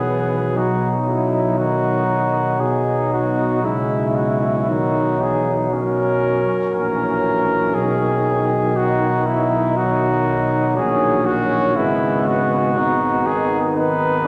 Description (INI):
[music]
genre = classical, hymn-like piece for brass band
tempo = 59 BPM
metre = 4/4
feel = rubato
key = B major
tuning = A4 = 440 Hz
[part]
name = clear cornet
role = melody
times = 0.0-14.3 s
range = E4 to B4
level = -24 LUFS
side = equal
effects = none
[part]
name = warm flugelhorn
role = second line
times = 0.0-14.3 s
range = B3 to E4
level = -26 LUFS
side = equal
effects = none
[part]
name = warm euphonium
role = accompaniment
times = 0.0-14.3 s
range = D#3 to B3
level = -26 LUFS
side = equal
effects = none
[part]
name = warm trombone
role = accompaniment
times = 0.0-14.3 s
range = B2 to F#3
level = -28 LUFS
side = equal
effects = none
[part]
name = mellow tuba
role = bass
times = 0.0-14.3 s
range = G#1 to B1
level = -25 LUFS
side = equal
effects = none
[sound]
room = wet church reverb, RT60 3.6 s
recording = none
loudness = -19 LUFS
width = mono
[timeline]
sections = 0.0-14.3 A section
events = none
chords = 0.0 B; 3.6 F#7/B; 7.8 B; 11.8 G#m